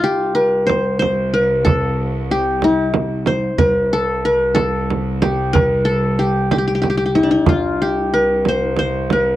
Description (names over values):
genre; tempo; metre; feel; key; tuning
Arabic maqam ensemble; 62 BPM (dotted quarters); 6/8; straight; C maqam rast; A4 = 441 Hz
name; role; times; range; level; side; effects
qanun; melody; 0.0-9.4 s; D4 to C5; -16 LUFS; left 1 dB; none
clear studio cello section; drone; 0.0-9.4 s; C2; -22 LUFS; right 1 dB; none
frame drum; percussion; 0.7-9.2 s; none; -19 LUFS; right 4 dB; none
room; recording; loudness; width
light reverb; dry, close 1970s-style studio recording; -15 LUFS; side -14 dB against mid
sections
0.0-9.4 A section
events
none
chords
none